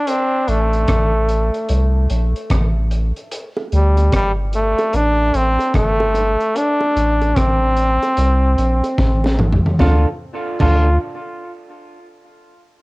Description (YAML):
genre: dub reggae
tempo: 74 BPM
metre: 4/4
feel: swing 63% on 16ths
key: D minor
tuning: A4 = 441 Hz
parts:
  - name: brilliant trombone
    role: melody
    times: 0.0-11.0 s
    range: G3 to F4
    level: -18 LUFS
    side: equal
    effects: cassette tape, tape echo
  - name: crunchy breakbeat drum kit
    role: drums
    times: 0.1-10.8 s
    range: crash cymbal, hi-hat, kick drum, rim click, snare drum, toms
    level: -21 LUFS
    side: equal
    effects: cassette tape
  - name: soft dub sub bass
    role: bass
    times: 0.5-11.0 s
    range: G1 to D2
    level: -16 LUFS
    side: equal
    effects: none
  - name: bongos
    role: percussion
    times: 3.6-11.0 s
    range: none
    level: -29 LUFS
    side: right 2 dB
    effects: tape echo
  - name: clean electric guitar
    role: accompaniment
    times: 9.8-10.9 s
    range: D4 to A4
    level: -25 LUFS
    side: right 3 dB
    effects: tape echo
room: light reverb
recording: home recording on cassette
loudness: -14 LUFS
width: side -22 dB against mid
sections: 0.0-9.8 A section; 9.8-12.8 B section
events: break 0.0-9.8; drum fill 9.0-9.8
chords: 0.1 N.C.; 3.3 D5; 6.6 Am; 9.8 Dm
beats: | 0.07 0.88 1.69 2.50 | 3.31 4.12 4.93 5.74 | 6.55 7.36 8.17 8.98 | 9.79 10.60